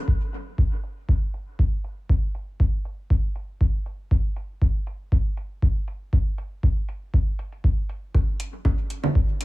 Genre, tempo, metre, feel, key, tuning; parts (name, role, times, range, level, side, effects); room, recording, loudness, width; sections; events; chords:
techno; 119 BPM; 4/4; swing 53% on 16ths
electronic kick drum; drums; 0.1-9.3 s; -21 LUFS; equal
electronic hi-hat; drums; 0.3-9.4 s; -40 LUFS; equal; low-pass filter on hats, low-pass filter on snare, dub echo
bongos and congas; percussion; 8.1-9.1 s; -30 LUFS; right 3 dB; overdrive, sidechain pumping on perc, dub echo
little or no reverb; -22 LUFS; side -19 dB against mid
0.1-8.1 A section; 8.1-9.4 B section